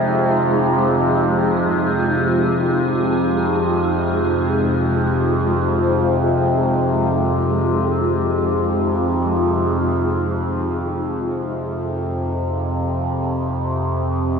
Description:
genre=dark ambient drone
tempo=free time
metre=none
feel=none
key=F minor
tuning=A4 = 440 Hz
part: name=granular cloud pad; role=sustained chords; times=0.0-10.3 s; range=Ab3 to Ab4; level=-21 LUFS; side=equal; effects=built-in reverb
part: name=overtone-sweeping drone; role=drone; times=0.0-14.4 s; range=F2 to C3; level=-18 LUFS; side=equal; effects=chorus, built-in reverb
part: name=bronze singing bowl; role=texture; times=10.3-14.4 s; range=none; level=barely audible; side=none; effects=none
room=wet huge ambient reverb, RT60 7.9 s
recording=in a vast, echoing space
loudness=-17 LUFS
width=side -6 dB against mid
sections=0.0-10.3 A section; 10.3-14.4 B section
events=none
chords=0.0 Fm; 10.3 F5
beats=free time

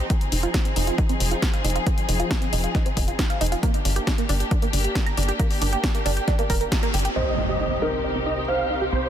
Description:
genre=uplifting trance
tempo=136 BPM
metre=4/4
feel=straight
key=C minor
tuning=A4 = 440 Hz
part: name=dark symphonic string section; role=sustained chords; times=0.0-9.1 s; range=C3 to Ab4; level=-30 LUFS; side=left 2 dB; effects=sidechain pumping
part: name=tight sequenced synth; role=arpeggios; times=0.1-9.0 s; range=Bb3 to C6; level=-29 LUFS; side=right 4 dB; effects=chorus, phaser, sidechain pumping, digital delay
part: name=electronic kick drum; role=drums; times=0.1-6.8 s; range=none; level=-23 LUFS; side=equal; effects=overdrive
part: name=punchy analog drum machine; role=drums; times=0.1-7.2 s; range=crash cymbal, hi-hat, snare drum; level=-30 LUFS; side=left 2 dB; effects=overdrive, low-pass filter on hats, low-pass filter on cymbals, low-pass filter on snare
part: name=tight sequencer bass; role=bass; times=0.3-9.1 s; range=F1 to C2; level=-26 LUFS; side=equal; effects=sidechain pumping
part: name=supersaw chords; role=melody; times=7.2-9.1 s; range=C5 to F5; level=-27 LUFS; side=right 2 dB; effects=sidechain pumping, low-pass filter, digital delay
part: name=felt-muted upright piano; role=second line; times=7.2-9.1 s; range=Bb4 to C5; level=-27 LUFS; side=right 1 dB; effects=dub echo
part: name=impact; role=sound effects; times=7.2-8.9 s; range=none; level=-30 LUFS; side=equal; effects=none
room=light reverb, digital ambience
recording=dense, heavily limited modern master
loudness=-20 LUFS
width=side -10 dB against mid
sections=0.0-7.2 A section; 7.2-9.1 B section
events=filter sweep on synth arpeggio sound 0.0-7.2, 7.2-9.1; band accent 6.7; impact 7.2-8.9; filter sweep on supersaw synth 7.2-9.1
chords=0.1 Fm7; 3.6 Gm; 7.2 Cm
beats=| 0.10 0.54 0.98 1.42 | 1.86 2.31 2.75 3.19 | 3.63 4.07 4.51 4.95 | 5.39 5.84 6.28 6.72 | 7.16 7.60 8.04 8.48 | 8.92

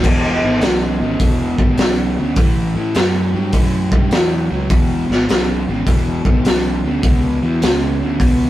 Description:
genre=blues rock power trio and southern rock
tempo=103 BPM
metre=4/4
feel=swing 66% on 8ths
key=E mixolydian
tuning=A4 = 440 Hz
part: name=fuzz guitar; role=riff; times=0.0-8.5 s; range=E2 to F#3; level=-20 LUFS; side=equal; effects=distortion
part: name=fuzz fingered electric bass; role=bass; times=0.0-8.5 s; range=E1 to A2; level=-20 LUFS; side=equal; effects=overdrive
part: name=raw garage drum kit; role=drums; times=0.0-8.4 s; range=crash cymbal, hi-hat, kick drum, snare drum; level=-16 LUFS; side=equal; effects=none
room=light reverb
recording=rough rehearsal-room recording, warm saturation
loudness=-14 LUFS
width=side -14 dB against mid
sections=0.0-8.5 A section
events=none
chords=0.0 E; 2.4 A7(no3); 4.7 E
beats=| 0.04 0.62 1.20 1.79 | 2.37 2.95 3.53 4.12 | 4.70 5.28 5.87 6.45 | 7.03 7.61 8.20

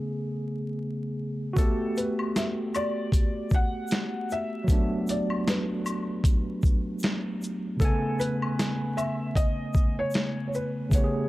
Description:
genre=lo-fi hip hop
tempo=77 BPM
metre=4/4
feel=swing 58% on 16ths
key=G major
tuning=A4 = 440 Hz
part: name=tine electric piano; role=accompaniment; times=0.0-11.3 s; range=C3 to G#5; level=-29 LUFS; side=equal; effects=fast stereo tremolo, cassette tape, low-pass filter
part: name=felt-muted upright piano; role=melody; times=1.6-11.3 s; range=A4 to F#5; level=-33 LUFS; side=left 1 dB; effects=low-pass filter, tape echo
part: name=boom bap sampler-style drum kit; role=drums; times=1.6-11.1 s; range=hi-hat, kick drum, shaker, snare drum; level=-25 LUFS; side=equal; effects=none
part: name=tube shaker and woodblock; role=percussion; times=1.6-11.1 s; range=none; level=-39 LUFS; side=left 3 dB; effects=none
room=light reverb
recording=vinyl crackle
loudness=-25 LUFS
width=side -17 dB against mid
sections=0.0-1.6 A section; 1.6-11.3 B section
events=none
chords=0.0 Amaj9; 1.6 Gmaj9; 7.8 Amaj9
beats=0.01 0.79 | 1.57 2.35 3.13 3.90 | 4.68 5.46 6.24 7.02 | 7.80 8.58 9.36 10.14 | 10.92

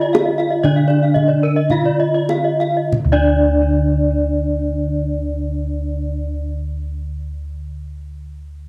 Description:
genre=Balinese gamelan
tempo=46-64 BPM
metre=4/4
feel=straight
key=unclear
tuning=A4 = 440 Hz
part: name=gamelan-type bronze metallophone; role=melody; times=0.0-6.5 s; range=D4 to F4-30c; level=-23 LUFS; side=equal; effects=cassette tape, analog delay
part: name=gamelan-type bronze metallophone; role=arpeggios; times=0.0-6.5 s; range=Bb4-20c to F5-30c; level=-27 LUFS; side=equal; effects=cassette tape
part: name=gamelan-type bronze metallophone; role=arpeggios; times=0.0-6.5 s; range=D5 to Eb5+20c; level=-24 LUFS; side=equal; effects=cassette tape, analog delay
part: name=gamelan-type bossed gongs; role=bass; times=0.0-6.4 s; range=D2 to D5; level=-22 LUFS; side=equal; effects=none
part: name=kendang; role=percussion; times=0.1-3.5 s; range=none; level=-24 LUFS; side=equal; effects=none
room=small room ambience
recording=home recording on cassette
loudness=-18 LUFS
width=mono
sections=0.0-2.9 A section; 2.9-8.1 B section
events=slowing down 0.0-2.9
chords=none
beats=0.64 1.71 | 2.92 4.22 5.52

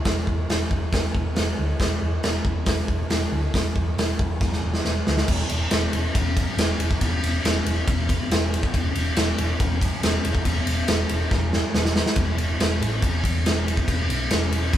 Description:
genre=garage rock duo or trio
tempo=139 BPM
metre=4/4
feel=straight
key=unclear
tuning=A4 = 439 Hz
part: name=raw garage drum kit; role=drums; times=0.0-14.8 s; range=crash cymbal, hi-hat, kick drum, ride cymbal, snare drum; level=-22 LUFS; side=equal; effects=none
part: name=hollow-body short-scale picked electric bass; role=bass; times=0.1-14.8 s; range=E1 to E2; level=-25 LUFS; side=equal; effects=none
room=moderate studio ambience, RT60 0.5 s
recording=band playing live in one room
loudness=-20 LUFS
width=side -11 dB against mid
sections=0.0-5.3 A section; 5.3-12.2 B section; 12.2-14.8 C section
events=drum fill 4.4-5.3, 11.3-12.2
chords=none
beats=| 0.05 0.49 0.92 1.36 | 1.79 2.23 2.67 3.10 | 3.54 3.97 4.41 4.84 | 5.28 5.71 6.14 6.58 | 7.01 7.44 7.87 8.30 | 8.73 9.16 9.60 10.02 | 10.45 10.88 11.31 11.74 | 12.17 12.60 13.03 13.45 | 13.88 14.31 14.74

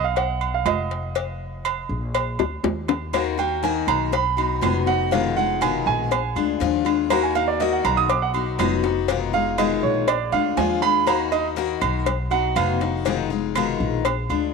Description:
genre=latin, Cuban son and guajira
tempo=121 BPM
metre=4/4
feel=straight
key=Eb harmonic minor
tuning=A4 = 443 Hz
part: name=warm grand piano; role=arpeggios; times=0.0-13.3 s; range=Db5 to Eb6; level=-24 LUFS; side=right 10 dB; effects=none
part: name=upright bass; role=bass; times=0.0-14.5 s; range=F1 to Eb2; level=-28 LUFS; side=left 1 dB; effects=none
part: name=agogo bells and timbales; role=percussion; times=0.2-14.5 s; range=none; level=-28 LUFS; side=right 13 dB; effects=none
part: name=cowbell and bongos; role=percussion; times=0.2-14.3 s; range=none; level=-27 LUFS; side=left 13 dB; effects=none
part: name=picked steel-string acoustic guitar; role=accompaniment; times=3.1-14.5 s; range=B2 to Gb4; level=-23 LUFS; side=left 14 dB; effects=none
room=light reverb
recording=1960s-style stereo with parts hard left and right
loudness=-20 LUFS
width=side -4 dB against mid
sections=0.0-14.5 A section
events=grand piano solo 0.0-14.5; drum fill 2.4-3.1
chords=0.0 B; 1.2 F7sus4; 2.1 Bb; 3.1 Ebm; 4.1 B; 5.1 Fm7b5; 6.1 Bb7; 7.1 Ebm; 8.1 B; 9.1 Fm7b5; 10.1 Bb7; 11.1 Ebm; 12.1 B; 13.1 Fm7b5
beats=0.17 0.66 | 1.16 1.65 2.15 2.64 | 3.14 3.63 4.13 4.63 | 5.12 5.62 6.11 6.61 | 7.11 7.60 8.10 8.59 | 9.09 9.59 10.08 10.58 | 11.07 11.57 12.07 12.56 | 13.06 13.55 14.05

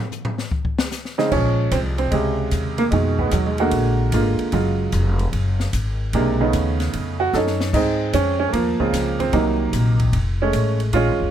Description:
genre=jazz piano trio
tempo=150 BPM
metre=4/4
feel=swing 67% on 8ths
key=Bb minor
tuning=A4 = 442 Hz
part: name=open jazz drum kit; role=drums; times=0.1-11.3 s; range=crash cymbal, hi-hat, kick drum, ride cymbal, snare drum, toms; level=-29 LUFS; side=left 2 dB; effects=none
part: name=bright upright piano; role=melody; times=1.2-11.3 s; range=Cb3 to A4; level=-20 LUFS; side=right 3 dB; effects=none
part: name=upright bass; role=bass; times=1.3-11.3 s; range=F1 to Ab2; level=-21 LUFS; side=left 1 dB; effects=none
room=little or no reverb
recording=close, detailed microphones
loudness=-18 LUFS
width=side -10 dB against mid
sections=0.0-1.3 A section; 1.3-11.3 B section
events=upright piano solo 0.0-1.3; drum solo 0.0-1.3; drum fill 7.3-7.7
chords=0.0 N.C.; 1.3 Bbm11; 2.9 Fm7b5; 3.7 Bb7b13; 4.5 Dbadd11/F; 6.1 B9; 7.7 Dbmaj7; 9.3 Cm7b5; 10.1 Faug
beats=0.12 0.52 0.92 | 1.32 1.72 2.12 2.52 | 2.92 3.32 3.73 4.13 | 4.53 4.93 5.33 5.73 | 6.13 6.53 6.93 7.33 | 7.73 8.13 8.53 8.93 | 9.33 9.73 10.13 10.53 | 10.93

